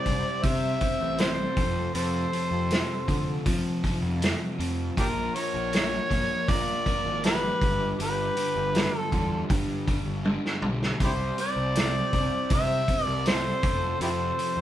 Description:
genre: blues rock power trio and southern rock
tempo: 80 BPM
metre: 4/4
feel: straight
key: unclear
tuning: A4 = 439 Hz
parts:
  - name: mellow harmonica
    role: melody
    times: 0.0-14.6 s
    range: D4 to E5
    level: -28 LUFS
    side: equal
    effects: overdrive
  - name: lead guitar through a small cranked amp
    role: second line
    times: 0.0-14.6 s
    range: F4 to C5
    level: -38 LUFS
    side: equal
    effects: overdrive
  - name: crunchy overdriven guitar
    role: riff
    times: 0.0-14.6 s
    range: F2 to C4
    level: -32 LUFS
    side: equal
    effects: none
  - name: fuzz picked electric bass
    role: bass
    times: 0.1-14.6 s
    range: G1 to F3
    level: -32 LUFS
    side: equal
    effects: overdrive
  - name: vintage drum kit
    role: drums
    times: 0.1-14.6 s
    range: hi-hat, kick drum, snare drum, toms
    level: -28 LUFS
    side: equal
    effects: none
room: moderate studio reverb, RT60 0.8 s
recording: band playing live in one room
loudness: -24 LUFS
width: side -12 dB against mid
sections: 0.0-14.6 A section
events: drum fill 10.3-11.0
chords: 0.0 C; 1.6 F; 5.0 Bb; 7.6 G; 11.0 C; 13.6 F

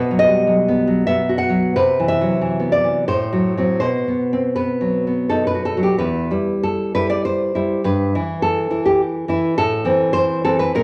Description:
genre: romantic piece for solo classical guitar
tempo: 80-106 BPM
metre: 3/4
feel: rubato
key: E minor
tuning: A4 = 440 Hz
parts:
  - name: nylon-string guitar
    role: solo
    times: 0.0-10.8 s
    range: E2 to F#5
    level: -18 LUFS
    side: equal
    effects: none
room: wet large studio reverb, RT60 1.3 s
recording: none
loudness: -18 LUFS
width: mono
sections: 0.0-6.0 A section; 6.0-10.8 B section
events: none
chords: 0.0 B; 1.8 Cmaj7; 3.1 F#dim/A; 3.8 B; 6.0 Em; 7.8 Em/G; 9.6 Am

